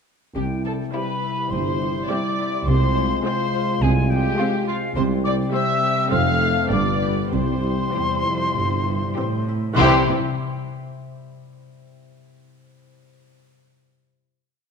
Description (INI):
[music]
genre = cinematic, playful, whimsical film cue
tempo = 103 BPM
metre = 4/4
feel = straight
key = C major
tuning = A4 = 440 Hz
[part]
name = bright concert flute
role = second line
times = 0.4-10.1 s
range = F5 to F6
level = -26 LUFS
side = left 2 dB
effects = none
[part]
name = muted studio violin section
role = second line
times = 0.4-10.1 s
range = F4 to F5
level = -28 LUFS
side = left 2 dB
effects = none
[part]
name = mellow French horn section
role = sustained chords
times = 0.4-10.0 s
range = G3 to F4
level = -28 LUFS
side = left 2 dB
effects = none
[part]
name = concert harp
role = arpeggios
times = 0.4-10.9 s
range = F2 to E5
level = -29 LUFS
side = left 7 dB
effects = none
[part]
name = mellow tuba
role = bass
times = 0.4-10.0 s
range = F1 to C2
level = -27 LUFS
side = right 4 dB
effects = none
[part]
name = muted studio cello section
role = bass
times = 0.4-10.1 s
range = E2 to C3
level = -27 LUFS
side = right 3 dB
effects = none
[part]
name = muted studio double bass section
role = bass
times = 0.4-10.1 s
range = F1 to C2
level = -27 LUFS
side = right 3 dB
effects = none
[part]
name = muted studio violin section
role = melody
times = 0.9-10.1 s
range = E4 to C5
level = -26 LUFS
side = left 4 dB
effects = none
[part]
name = muted studio viola section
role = accompaniment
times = 0.9-10.1 s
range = E3 to E4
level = -28 LUFS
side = right 3 dB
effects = none
[sound]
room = wet scoring stage reverb, RT60 1.9 s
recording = dark, warm production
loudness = -19 LUFS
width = side -6 dB against mid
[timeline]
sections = 0.4-9.8 A section; 9.8-12.1 final chord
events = none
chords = 0.4 C; 2.7 Fm/C; 5.0 C; 6.1 F; 6.7 G; 7.3 C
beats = | 0.36 0.95 1.53 2.10 | 2.68 3.26 3.83 4.40 | 4.97 5.54 6.12 6.72 | 7.33 7.95 8.56 9.17 | 9.78 10.36